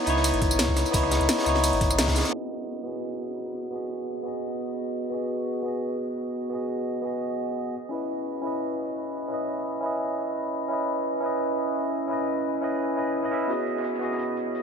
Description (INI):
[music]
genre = liquid drum and bass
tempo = 172 BPM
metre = 4/4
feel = swing 54% on 16ths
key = G# minor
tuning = A4 = 440 Hz
[part]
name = barky tine electric piano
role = accompaniment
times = 0.0-14.6 s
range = B3 to E5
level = -26 LUFS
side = equal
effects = overdrive, phaser, ping-pong delay
[part]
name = sub bass with octave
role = bass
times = 0.1-2.2 s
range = G#1 to C#2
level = -27 LUFS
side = equal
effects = none
[part]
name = crunchy breakbeat drum kit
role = drums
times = 0.1-2.3, 13.5-14.6 s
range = hi-hat, snare drum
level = -35 LUFS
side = equal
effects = high-pass filter on hats, high-pass filter on snare, high-pass filter on room
[part]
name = drum and bass drum kit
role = drums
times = 0.1-2.3 s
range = hi-hat, ride cymbal, rim click, snare drum, tambourine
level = -29 LUFS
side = equal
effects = none
[part]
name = electronic kick drum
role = drums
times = 0.4-2.1 s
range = none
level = -28 LUFS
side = equal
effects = none
[sound]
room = wet huge ambient reverb, RT60 7.5 s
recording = dreamy mix soaked in reverb, low-pass filter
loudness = -25 LUFS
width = side -6 dB against mid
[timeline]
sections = 0.0-2.3 A section; 2.3-14.6 B section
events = drop 0.0-2.3; band accent 2.0; filter sweep 2.3-14.6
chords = 0.0 C#m9; 2.3 G#m7; 7.7 C#m9; 13.5 G#m7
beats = 0.24 0.59 | 0.94 1.29 1.64 1.99 | 2.33 2.68 3.03 3.38 | 3.73 4.08 4.43 4.78 | 5.13 5.47 5.82 6.17 | 6.52 6.87 7.22 7.57 | 7.92 8.27 8.61 8.96 | 9.31 9.66 10.01 10.36 | 10.71 11.06 11.40 11.75 | 12.10 12.45 12.80 13.15 | 13.50 13.85 14.20 14.54